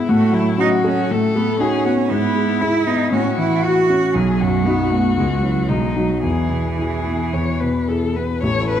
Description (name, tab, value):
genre	quick classical-period movement for piano trio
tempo	108-121 BPM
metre	4/4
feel	rubato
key	E major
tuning	A4 = 440 Hz
part	rich violin	melody	0.0-8.8 s	D#4 to C#5	-24 LUFS	left 6 dB	none
part	warm grand piano	accompaniment	0.0-8.8 s	A1 to G#4	-19 LUFS	left 1 dB	none
part	clear cello	second line	0.1-8.8 s	E3 to A4	-20 LUFS	right 4 dB	none
room	wet recital hall reverb, RT60 1.4 s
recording	dark, warm production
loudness	-16 LUFS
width	side -10 dB against mid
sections	0.0-8.4 A section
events	none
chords	0.1 F#m/A; 1.1 B7/A; 2.1 E/G#; 3.1 F#m7/A; 4.2 B; 5.2 C#m; 5.7 B; 6.2 E